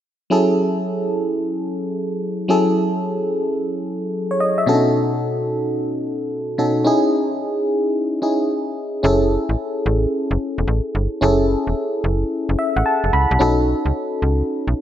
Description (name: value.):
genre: R&B.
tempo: 110 BPM.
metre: 4/4.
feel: swing 66% on 16ths.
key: F# dorian.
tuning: A4 = 437 Hz.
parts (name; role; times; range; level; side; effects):
FM electric piano; accompaniment; 0.3-14.8 s; B2 to B5; -18 LUFS; equal; chorus.
slap-like FM bass; bass; 9.0-14.7 s; E1 to C#2; -19 LUFS; equal; none.
room: wet plate reverb, RT60 2.5 s.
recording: bright 1980s-style digital production.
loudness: -17 LUFS.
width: side -11 dB against mid.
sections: 0.3-9.0 A section; 9.0-14.8 B section.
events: FM electric piano fill 12.3-13.4.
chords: 0.3 F#m7; 4.7 B7; 6.9 C#madd9; 9.0 F#m7; 13.4 B7.